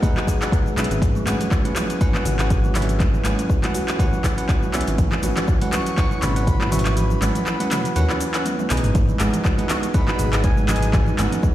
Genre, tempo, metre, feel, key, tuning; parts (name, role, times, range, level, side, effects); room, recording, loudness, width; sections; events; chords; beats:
afro house; 121 BPM; 4/4; swing 55% on 16ths; A4 = 440 Hz
kalimba; arpeggios; 0.0-11.5 s; E3 to G#4; -28 LUFS; right 1 dB; sidechain pumping, dub echo
bell-like tine electric piano; stabs; 0.0-11.5 s; C#4 to F#5; -28 LUFS; right 1 dB; sidechain pumping, dub echo
smooth synth bass; bass; 0.0-11.3 s; G#1 to D#2; -22 LUFS; equal; sidechain pumping
deep house drum kit; drums; 0.0-11.5 s; handclaps, hi-hat, shaker, toms; -26 LUFS; left 1 dB; overdrive
electronic kick drum; drums; 0.0-11.5 s; -20 LUFS; equal; overdrive
congas; percussion; 0.2-11.4 s; -28 LUFS; right 2 dB
bright reedy silver concert flute; melody; 5.7-11.1 s; G#5 to C#6; -32 LUFS; left 1 dB; dub echo
light reverb; played on a big sound system in a bare room, stone room reverb; -18 LUFS; side -13 dB against mid
0.0-11.5 A section
kick drops out 7.0-9.0; drum fill 8.5-9.0
0.0 G#m7; 1.0 F#sus4/G#; 9.0 G#m7
0.03 0.52 | 1.02 1.51 2.01 2.50 | 3.00 3.50 3.99 4.49 | 4.98 5.48 5.97 6.47 | 6.97 7.46 7.96 8.46 | 8.95 9.45 9.94 10.44 | 10.93 11.43